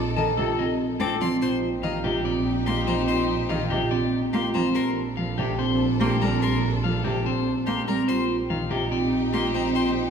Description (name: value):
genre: classical, minimalist pattern music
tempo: 144 BPM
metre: 4/4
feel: straight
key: Bb major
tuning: A4 = 440 Hz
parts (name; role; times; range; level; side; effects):
- rich symphonic string section; sustained chords; 0.0-10.1 s; D4 to A4; -33 LUFS; left 2 dB; none
- rich chamber double bass section; bass; 0.0-10.1 s; Bb1; -29 LUFS; right 2 dB; none
- electric guitar at the edge of break-up; melody; 0.2-10.0 s; G4 to A5; -30 LUFS; left 8 dB; none
- rich cello; accompaniment; 0.2-9.5 s; C3 to C4; -30 LUFS; left 1 dB; none
- rich violin; arpeggios; 0.2-9.9 s; Eb5 to D6; -36 LUFS; left 4 dB; none
- vibraphone with soft mallets; arpeggios; 0.2-10.0 s; C4 to A4; -26 LUFS; right 3 dB; none
room: wet recital hall reverb, RT60 1.7 s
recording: none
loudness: -22 LUFS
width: side -7 dB against mid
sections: 0.0-10.1 A section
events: none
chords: 0.0 F7/Bb; 1.4 Ebadd9/Bb; 4.7 Bbmaj9; 8.1 Ebadd9/Bb